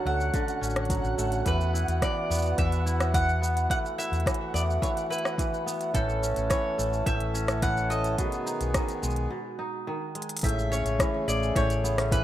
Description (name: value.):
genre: folktronica.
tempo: 107 BPM.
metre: 4/4.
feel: straight.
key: E major.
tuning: A4 = 440 Hz.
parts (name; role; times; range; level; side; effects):
pedal harmonium; sustained chords; 0.0-12.2 s; C#3 to A4; -32 LUFS; equal; none.
kora; arpeggios; 0.0-12.2 s; A2 to G#4; -33 LUFS; right 2 dB; none.
flickering grainy texture; texture; 0.0-9.3 s; F#5; -40 LUFS; right 3 dB; built-in reverb.
mandolin; melody; 0.1-12.2 s; A4 to F#5; -32 LUFS; equal; ping-pong delay.
fingered electric bass; bass; 0.1-12.2 s; A1 to E2; -28 LUFS; equal; tube saturation.
organic electronic drum kit; drums; 0.2-12.2 s; hi-hat, rim click, shaker; -33 LUFS; left 1 dB; none.
electronic kick drum; drums; 0.3-12.2 s; none; -30 LUFS; equal; overdrive.
room: light reverb, digital ambience.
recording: rough home demo mix.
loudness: -25 LUFS.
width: side -12 dB against mid.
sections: 0.0-10.4 A section; 10.4-12.2 B section.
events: break 9.3-10.4; drum fill 10.2.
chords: 0.0 Dmaj7; 1.5 Esus2; 5.9 A; 8.2 B6; 10.4 Amaj7.